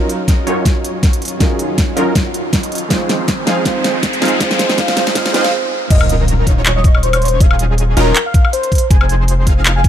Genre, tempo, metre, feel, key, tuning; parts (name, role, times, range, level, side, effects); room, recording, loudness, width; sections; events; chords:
future bass; 160 BPM; 4/4; swing 54% on 16ths, half-time; A4 = 440 Hz
warm velvety synth lead; melody; 0.0-9.9 s; C5 to Ab5; -22 LUFS; left 1 dB; chorus, sidechain pumping, dub echo
felt-muted upright piano; accompaniment; 0.0-5.7 s; Gb3 to C5; -22 LUFS; right 5 dB; sidechain pumping, digital delay
shimmering ambient pad; sustained chords; 0.9-5.9 s; Eb3 to F4; -28 LUFS; equal
supersaw stab; riff; 0.0-9.9 s; F3 to F5; -21 LUFS; equal; sidechain pumping, low-pass filter, digital delay
long sustained 808-style bass; bass; 0.0-9.9 s; Eb1 to F2; -16 LUFS; equal; sidechain pumping, high-pass filter
riser and impact; sound effects; 1.9-7.4 s; -23 LUFS; left 1 dB
pop drum kit; drums; 0.1-9.9 s; crash cymbal, handclaps, hi-hat, snare drum, woodblock; -18 LUFS; left 1 dB
electronic kick drum; drums; 0.3-9.9 s; -12 LUFS; equal
airy dreamy lead; arpeggios; 5.9-9.9 s; Ab4 to F5; -24 LUFS; left 1 dB; chorus, sidechain pumping
little or no reverb; high-pass filter; -12 LUFS; side -10 dB against mid
0.0-5.9 A section; 5.9-9.9 B section
build-up 0.0-5.9; drum fill 0.0-5.5; filter sweep on supersaw synth 0.0-5.9; filter sweep on soft synth lead 0.0-5.9; filter sweep 0.0-5.9; riser 1.9-5.5; break 5.5-5.9; drop 5.9-9.9; impact 5.9-7.4
0.0 Ebm9; 2.7 Fm7; 5.7 Ebm9; 8.7 Fm7